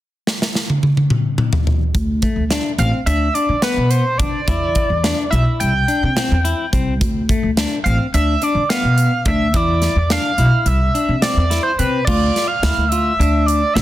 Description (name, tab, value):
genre	progressive instrumental, band music in an uneven meter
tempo	214 BPM (eighths)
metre	9/8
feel	straight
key	D dorian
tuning	A4 = 441 Hz
part	tight metal drum kit	drums	0.3-13.8 s	crash cymbal, hi-hat, kick drum, snare drum, toms	-19 LUFS	equal	none
part	upright bass	bass	1.9-13.8 s	A1 to D3	-18 LUFS	equal	none
part	clean electric guitar	arpeggios	2.2-13.8 s	A3 to F4	-23 LUFS	left 4 dB	warbly pitch drift, ping-pong delay
part	sync lead	melody	2.8-13.8 s	B4 to G5	-19 LUFS	right 1 dB	chorus, ping-pong delay
room	light reverb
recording	dense, heavily limited modern master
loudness	-14 LUFS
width	side -14 dB against mid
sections	0.0-1.9 A section; 1.9-12.1 B section; 12.1-13.8 C section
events	drum fill 0.3-1.9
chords	0.0 N.C.; 1.9 D5; 3.1 Cmaj9/D; 4.5 E5; 5.6 C; 7.0 D5; 8.1 Dm69; 9.5 E5; 10.7 C; 12.1 Dm